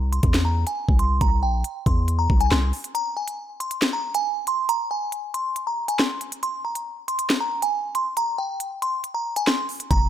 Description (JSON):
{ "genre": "hip hop, drill", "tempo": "138 BPM", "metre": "4/4", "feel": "half-time", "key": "unclear", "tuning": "A4 = 440 Hz", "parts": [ { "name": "delicate synth tine bell", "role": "melody", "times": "0.0-10.1 s", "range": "G5 to C6", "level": "-25 LUFS", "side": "right 1 dB", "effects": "chorus, phaser" }, { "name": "long sustained 808-style bass", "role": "bass", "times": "0.0-2.7, 9.9-10.1 s", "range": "F1 to E2", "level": "-21 LUFS", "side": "equal", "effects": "none" }, { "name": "drill drum kit", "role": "drums", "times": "0.1-10.0 s", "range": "handclaps, hi-hat, kick drum, snare drum", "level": "-22 LUFS", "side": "equal", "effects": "none" } ], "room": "digital ambience", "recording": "none", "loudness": "-21 LUFS", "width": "side -11 dB against mid", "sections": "0.0-10.1 A section", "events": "break 3.0-9.9", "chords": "0.0 C7; 3.0 N.C.", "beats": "0.34 0.78 | 1.21 1.65 2.08 2.52 | 2.95 3.38 3.82 4.25 | 4.69 5.12 5.56 5.99 | 6.43 6.86 7.30 7.73 | 8.17 8.60 9.04 9.47 | 9.91" }